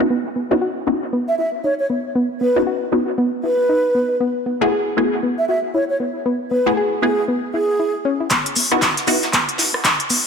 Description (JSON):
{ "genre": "deep house", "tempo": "117 BPM", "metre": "4/4", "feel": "swing 60% on 16ths", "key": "C# minor", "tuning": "A4 = 441 Hz", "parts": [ { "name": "filtered dub chord stab", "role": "stabs", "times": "0.0-10.3 s", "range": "A3 to G#4", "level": "-21 LUFS", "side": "left 1 dB", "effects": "phaser, sidechain pumping, dub echo" }, { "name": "soft round pluck", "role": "arpeggios", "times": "0.1-10.2 s", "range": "B3 to G#4", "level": "-22 LUFS", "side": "left 1 dB", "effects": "chorus, vintage 12-bit sampler grit, sidechain pumping, dub echo" }, { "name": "mellow hollow concert flute", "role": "melody", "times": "1.3-7.9 s", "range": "G#4 to E5", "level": "-20 LUFS", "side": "right 1 dB", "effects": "ping-pong delay" }, { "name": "deep house drum kit", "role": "drums", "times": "8.3-10.2 s", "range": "handclaps, hi-hat, rim click", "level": "-16 LUFS", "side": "equal", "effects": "high-pass filter on snare, high-pass filter on hats" }, { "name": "electronic kick drum", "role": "drums", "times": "8.3-10.0 s", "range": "none", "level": "-30 LUFS", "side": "equal", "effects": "high-pass filter on kick" }, { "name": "soft brush drum kit", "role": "drums", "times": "8.3-10.2 s", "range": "hi-hat, shaker, snare drum", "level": "-25 LUFS", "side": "equal", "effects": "sidechain pumping on hats, high-pass filter on hats, high-pass filter on snare, sidechain pumping on perc, high-pass filter on perc, high-pass filter on room" } ], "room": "moderate echo chamber reverb, RT60 2.2 s", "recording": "none", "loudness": "-16 LUFS", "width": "side -6 dB against mid", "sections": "0.0-8.3 A section; 8.3-10.3 B section", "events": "filter sweep on synth stab 0.0-8.3; filter sweep on synth arpeggio sound 0.0-8.3, 8.3-10.3; build-up 8.3-10.3; drum fill 8.3-10.3", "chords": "0.1 C#m11; 4.2 F#m11; 8.3 Badd11", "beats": "| 0.10 0.61 1.13 1.64 | 2.15 2.67 3.18 3.69 | 4.21 4.72 5.23 5.74 | 6.26 6.77 7.28 7.79 | 8.31 8.82 9.33 9.85" }